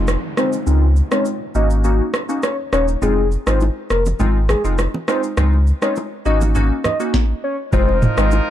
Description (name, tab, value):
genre	afrobeats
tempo	102 BPM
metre	4/4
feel	straight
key	unclear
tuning	A4 = 440 Hz
part	glassy digital keys	accompaniment	0.0-8.3 s	Ab3 to Gb4	-22 LUFS	left 1 dB	chorus, low-pass filter
part	sub bass with octave	bass	0.0-8.4 s	Eb1 to Db2	-16 LUFS	equal	none
part	downlifter	sound effects	0.0-3.0 s	none	-34 LUFS	right 1 dB	none
part	booming analog drum machine	drums	0.1-8.5 s	kick drum, rim click, shaker, snare drum, toms	-21 LUFS	right 1 dB	overdrive, vintage 12-bit sampler grit
part	soft octave-layered synth lead	melody	0.4-8.3 s	Ab4 to Eb5	-23 LUFS	left 2 dB	chorus, low-pass filter, ping-pong delay
part	congas and bongos	percussion	3.0-8.5 s	none	-26 LUFS	right 2 dB	none
part	clear horn section	second line	7.7-8.5 s	F3 to Bb4	-23 LUFS	equal	ping-pong delay
room	little or no reverb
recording	dark, warm production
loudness	-15 LUFS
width	side -12 dB against mid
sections	0.0-7.7 A section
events	filter sweep 0.0-7.7; stop 7.1-7.7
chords	0.0 Fm7; 0.7 Dbmaj9; 1.6 Ab7sus4; 3.0 Fm7; 5.4 Dbmaj9; 6.3 Ab7sus4; 7.7 Fm7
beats	0.08 | 0.67 1.26 1.84 2.43 | 3.02 3.61 4.20 4.79 | 5.37 5.96 6.55 7.14 | 7.73 8.31